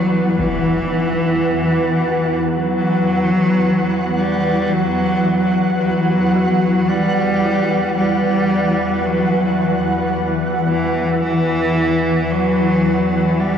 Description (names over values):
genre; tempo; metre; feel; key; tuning
dark ambient drone; 56 BPM; 4/4; straight; E harmonic minor; A4 = 441 Hz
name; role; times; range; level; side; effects
clear cello; melody; 0.0-13.6 s; E3 to G3; -18 LUFS; equal; ping-pong delay
granular cloud pad; sustained chords; 0.0-13.6 s; E3 to B4; -20 LUFS; left 1 dB; built-in reverb
overtone-sweeping drone; drone; 2.1-13.6 s; E2 to E3; -28 LUFS; left 1 dB; chorus, built-in reverb
flickering grainy texture; texture; 0.0-13.6 s; F#5; -24 LUFS; right 1 dB; built-in reverb
impact; percussion; 0.4-0.6 s; none; -33 LUFS; equal; low-pass filter on sfx
dark detuned synth bell; arpeggios; 0.8-13.6 s; B3 to F#4; -33 LUFS; equal; none
room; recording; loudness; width
wet huge ambient reverb, RT60 6.9 s; worn, warbling old tape, cassette tape, warbly pitch drift; -15 LUFS; side -8 dB against mid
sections
0.0-13.6 A section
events
fade-in on synth drone 0.0-13.6; fade-in on impacts and reversed cymbals 0.0-13.6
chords
0.0 Emadd9